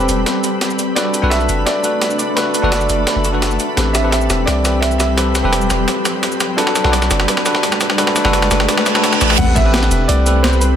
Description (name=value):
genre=liquid drum and bass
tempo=171 BPM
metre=4/4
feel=straight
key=A dorian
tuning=A4 = 440 Hz
part: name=warm baby grand piano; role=melody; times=0.0-10.7 s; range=A4 to F#5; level=-23 LUFS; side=right 1 dB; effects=analog delay
part: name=bell-like tine electric piano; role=accompaniment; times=0.0-10.8 s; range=C4 to C5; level=-19 LUFS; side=equal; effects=tape echo
part: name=shimmering ambient pad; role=sustained chords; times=0.0-10.8 s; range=G3 to B5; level=-22 LUFS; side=left 1 dB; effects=chorus, built-in reverb
part: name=long sustained 808-style bass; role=bass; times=0.0-10.8 s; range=E1 to C2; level=-17 LUFS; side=equal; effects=none
part: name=breakbeat sampler-style drum kit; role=drums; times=0.0-10.7 s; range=cabasa, crash cymbal, hi-hat, snare drum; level=-19 LUFS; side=equal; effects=high-pass filter on hats, studio reverb, high-pass filter on snare, high-pass filter on perc, high-pass filter on cymbals, dub echo
part: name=riser, reverse cymbal and sub drop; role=sound effects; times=0.5-10.8 s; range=none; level=-23 LUFS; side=equal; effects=none
part: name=electronic kick drum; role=drums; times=9.4-9.6 s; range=none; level=-18 LUFS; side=equal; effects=none
room=moderate plate reverb, RT60 0.9 s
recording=echo-heavy mix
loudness=-13 LUFS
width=side -9 dB against mid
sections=0.0-9.4 A section; 9.4-10.8 B section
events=build-up 0.0-9.4; drum fill 0.0-9.4; riser 0.5-9.4; reverse cymbal 8.7-9.4; drop 9.4-10.8; impact 9.4-10.8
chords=0.0 Am9; 1.0 Bm7; 3.8 Am9; 6.6 Bm7; 9.4 Am9